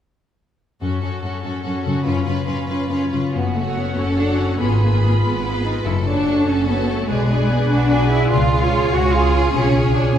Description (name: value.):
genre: classical, dramatic, fast romantic movement for symphony orchestra.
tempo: 97 BPM (dotted quarters).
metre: 6/8.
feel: rubato.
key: F# minor.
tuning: A4 = 440 Hz.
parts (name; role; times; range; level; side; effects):
bright symphonic violin section; melody; 0.8-10.2 s; E#4 to B4; -30 LUFS; left 1 dB; none.
warm studio violin section; second line; 0.8-10.2 s; E#4 to Cb6; -27 LUFS; left 1 dB; none.
rich symphonic viola section; accompaniment; 0.8-10.2 s; C#4 to B4; -25 LUFS; right 2 dB; none.
concert harp; arpeggios; 0.8-10.2 s; F#2 to G#5; -22 LUFS; left 2 dB; none.
rich symphonic cello section; bass; 0.8-10.2 s; F#2 to F#4; -21 LUFS; right 1 dB; none.
clear symphonic double bass section; bass; 3.4-10.2 s; F#1 to C#2; -22 LUFS; right 1 dB; none.
room: wet recital hall reverb, RT60 1.7 s.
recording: recorded in a church or concert hall.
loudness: -16 LUFS.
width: side -9 dB against mid.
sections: 0.8-3.4 A section; 3.4-10.2 B section.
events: none.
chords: 0.8 F#m; 2.1 C#7/F#; 3.4 F#m; 4.6 Fdim/Ab; 5.9 F#m; 7.1 G#dim/B; 8.3 C#; 9.5 C#7/B.